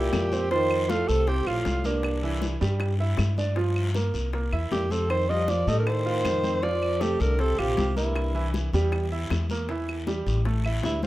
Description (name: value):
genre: Afro-Cuban jazz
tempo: 157 BPM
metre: 4/4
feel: straight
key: C mixolydian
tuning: A4 = 440 Hz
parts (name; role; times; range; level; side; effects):
- breathy alto saxophone; melody; 0.0-11.1 s; D4 to Eb5; -27 LUFS; right 2 dB; none
- trombone with bucket mute; second line; 0.0-11.1 s; G2 to G3; -32 LUFS; left 3 dB; none
- clear baby grand piano; accompaniment; 0.0-11.1 s; E3 to F5; -31 LUFS; right 3 dB; none
- upright bass; bass; 0.0-11.1 s; A1 to A2; -27 LUFS; left 1 dB; none
- bongos; percussion; 0.1-11.1 s; none; -38 LUFS; left 7 dB; none
- claves; percussion; 0.1-10.8 s; none; -39 LUFS; right 2 dB; none
- congas; percussion; 0.1-11.1 s; none; -36 LUFS; left 3 dB; none
- guiro; percussion; 0.1-11.1 s; none; -40 LUFS; left 3 dB; none
room: light reverb, studio reverb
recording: rough home demo mix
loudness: -23 LUFS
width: side -16 dB against mid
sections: 0.0-11.1 A section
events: none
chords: 0.0 C7; 0.5 F7; 2.0 C9; 3.6 Gm7; 4.3 C7; 5.1 F9; 8.2 C7; 9.7 Emadd11; 10.5 A5